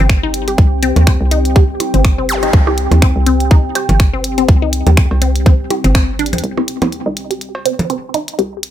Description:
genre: minimal techno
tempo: 123 BPM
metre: 4/4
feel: swing 57% on 16ths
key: C minor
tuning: A4 = 441 Hz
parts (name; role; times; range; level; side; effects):
- resonant blip pluck; riff; 0.0-8.4 s; C4 to G4; -19 LUFS; left 2 dB; phaser, vintage 12-bit sampler grit, sidechain pumping, digital delay
- hollow knocking FM bass; bass; 0.0-8.7 s; G1 to Eb2; -15 LUFS; equal; sidechain pumping, high-pass filter
- deep dark ambient pad; texture; 0.0-8.7 s; C4 to C6; -22 LUFS; left 1 dB; chorus, built-in reverb, sidechain pumping
- electronic kick drum; drums; 0.1-6.1 s; none; -10 LUFS; equal; none
- minimal click drum kit; drums; 0.1-8.7 s; finger snaps, hi-hat; -21 LUFS; left 1 dB; none
- percussion blips and cowbell; percussion; 1.0-7.9 s; none; -20 LUFS; right 3 dB; digital delay
- zap; sound effects; 2.3-2.4 s; none; -21 LUFS; equal; none
room: light reverb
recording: none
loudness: -11 LUFS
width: side -11 dB against mid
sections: 0.0-6.4 A section; 6.4-8.7 B section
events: band accent 5.9; drum fill 6.2; filter sweep on synth arpeggio sound 6.4-8.7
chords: 0.0 C5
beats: 0.10 | 0.58 1.07 1.56 2.05 | 2.53 3.02 3.51 4.00 | 4.49 4.97 5.46 5.95 | 6.44 6.92 7.41 7.90 | 8.39

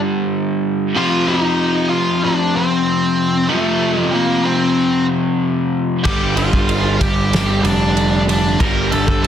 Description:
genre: quiet-loud alternative rock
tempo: 94 BPM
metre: 4/4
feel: straight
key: unclear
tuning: A4 = 440 Hz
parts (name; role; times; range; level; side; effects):
- overdriven electric guitar; riff; 0.0-9.3 s; F2 to G3; -17 LUFS; equal; none
- octave-fuzz lead guitar; melody; 1.0-9.3 s; A3 to Bb5; -19 LUFS; equal; distortion, slapback echo
- fuzz picked electric bass; bass; 6.1-9.3 s; F1 to G1; -20 LUFS; equal; overdrive
- loose indie drum kit; drums; 6.1-9.3 s; crash cymbal, kick drum, ride cymbal, snare drum; -19 LUFS; equal; none
room: light reverb, studio reverb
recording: dense, heavily limited modern master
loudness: -14 LUFS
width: side -9 dB against mid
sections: 0.0-9.3 A section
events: none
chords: 0.0 G5; 1.0 F; 6.1 G5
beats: 0.34 | 0.97 1.60 2.24 2.87 | 3.51 4.14 4.78 5.42 | 6.05 6.69 7.32 7.96 | 8.59 9.23

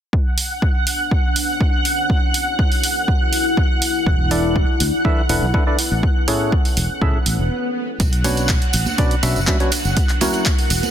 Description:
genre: piano house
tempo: 122 BPM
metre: 4/4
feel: straight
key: B dorian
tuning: A4 = 440 Hz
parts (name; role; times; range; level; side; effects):
- analog string pad; sustained chords; 0.1-10.9 s; F#5 to F#6; -24 LUFS; right 1 dB; ensemble chorus, sidechain pumping
- electronic kick drum; drums; 0.1-10.6 s; none; -18 LUFS; equal; overdrive
- deep dark ambient pad; texture; 0.9-10.9 s; D4 to A5; -27 LUFS; left 3 dB; chorus, built-in reverb, sidechain pumping
- punchy analog drum machine; drums; 0.4-10.9 s; handclaps, hi-hat; -23 LUFS; right 2 dB; overdrive
- fingered electric bass; bass; 4.1-10.8 s; E1 to D2; -21 LUFS; equal; sidechain pumping
- percussive organ stab; riff; 4.3-10.5 s; A2 to F#5; -22 LUFS; equal; chorus, sidechain pumping, ping-pong delay
- swell; sound effects; 7.2-8.0 s; none; -25 LUFS; equal; none
- warm soul drum kit; drums; 8.0-10.8 s; ride cymbal, snare drum; -31 LUFS; right 6 dB; sidechain pumping on cymbals, high-pass filter on cymbals, high-pass filter on snare, high-pass filter on room
- tambourine and congas; percussion; 8.0-10.9 s; none; -26 LUFS; right 4 dB; none
room: small room ambience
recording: dense, heavily limited modern master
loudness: -16 LUFS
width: side -10 dB against mid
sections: 0.1-8.0 A section; 8.0-10.9 B section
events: swell 7.2-8.0; stop 7.5-8.0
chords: 0.1 Bmadd9; 3.8 E7sus4; 5.8 Amaj7; 8.0 Bmadd9; 9.7 F#7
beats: | 0.13 0.62 1.11 1.61 | 2.10 2.59 3.08 3.57 | 4.07 4.56 5.05 5.54 | 6.03 6.52 7.02 7.51 | 8.00 8.49 8.98 9.47 | 9.97 10.46

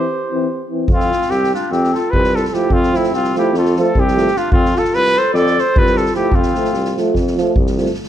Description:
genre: balkan folk, Balkan brass band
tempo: 298 BPM (eighths)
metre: 9/8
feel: straight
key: unclear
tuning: A4 = 440 Hz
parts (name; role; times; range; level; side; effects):
- mellow trumpet; melody; 0.0-7.0 s; E4 to D5; -18 LUFS; equal; none
- warm clarinet; second line; 0.0-7.0 s; C4 to A4; -22 LUFS; left 2 dB; none
- warm euphonium; accompaniment; 0.0-7.9 s; A3 to C4; -24 LUFS; left 5 dB; none
- warm euphonium; accompaniment; 0.0-7.9 s; E3 to F3; -21 LUFS; right 5 dB; none
- clear tuba; bass; 0.9-7.9 s; C2 to F2; -20 LUFS; equal; none
- street-band drum kit; percussion; 0.9-8.1 s; kick drum, snare drum; -19 LUFS; equal; none
room: light reverb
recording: dark, warm production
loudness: -13 LUFS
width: side -11 dB against mid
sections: 0.9-8.1 A section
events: break 0.0-0.9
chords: 0.0 C; 0.9 F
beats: 0.06 0.26 0.47 0.67 | 0.87 1.07 1.28 1.48 1.68 1.88 2.09 2.29 2.49 | 2.69 2.89 3.10 3.30 3.50 3.70 3.90 4.11 4.31 | 4.51 4.71 4.91 5.11 5.31 5.51 5.72 5.92 6.12 | 6.32 6.52 6.72 6.92 7.12 7.32 7.52 7.72 7.92

